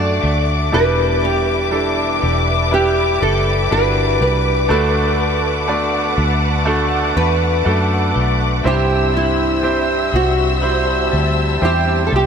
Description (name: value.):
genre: pop ballad.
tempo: 61 BPM.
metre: 4/4.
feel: straight.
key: E minor.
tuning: A4 = 440 Hz.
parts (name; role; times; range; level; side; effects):
nylon-string guitar; melody; 0.0-12.3 s; E4 to D5; -20 LUFS; equal; analog chorus.
clear grand piano; accompaniment; 0.0-12.3 s; G2 to E5; -20 LUFS; right 3 dB; none.
dark studio string section; sustained chords; 0.0-12.3 s; A4 to E6; -21 LUFS; left 2 dB; none.
direct-recorded clean electric guitar; arpeggios; 0.0-12.3 s; E2 to F#4; -28 LUFS; left 6 dB; ensemble chorus.
vintage muted fingered electric bass; bass; 0.0-12.3 s; E1 to F#2; -19 LUFS; equal; none.
room: moderate huge ambient reverb, RT60 3.7 s.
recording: dreamy mix soaked in reverb.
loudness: -14 LUFS.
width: side -7 dB against mid.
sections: 0.0-12.3 A section.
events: none.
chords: 0.0 D; 0.7 Em7; 4.7 Bm7/D; 8.6 C.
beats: | 0.72 1.72 2.72 3.71 | 4.70 5.68 6.67 7.66 | 8.64 9.63 10.62 11.62.